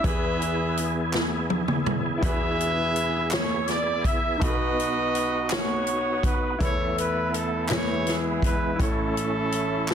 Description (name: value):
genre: slow gospel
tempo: 55 BPM (dotted quarters)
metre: 6/8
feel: straight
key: unclear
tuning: A4 = 440 Hz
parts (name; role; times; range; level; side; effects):
- warm horn section; melody; 0.0-9.9 s; C#4 to E5; -27 LUFS; right 1 dB; none
- warm baby grand piano; accompaniment; 0.0-9.9 s; A1 to C#5; -30 LUFS; left 2 dB; none
- overdriven tonewheel organ; sustained chords; 0.0-9.9 s; G#3 to G#4; -30 LUFS; right 2 dB; fast rotary speaker, chorus vibrato
- swinging big-band drum kit; drums; 0.0-9.9 s; hi-hat, kick drum, snare drum, toms; -27 LUFS; equal; none
- group handclap; percussion; 1.1-9.9 s; none; -31 LUFS; right 2 dB; none
room: light reverb, small room ambience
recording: dense, heavily limited modern master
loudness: -22 LUFS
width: side -8 dB against mid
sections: 0.0-9.9 A section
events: drum fill 1.1-2.2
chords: 0.0 E; 4.4 B; 6.6 Esus4; 7.7 E; 8.8 A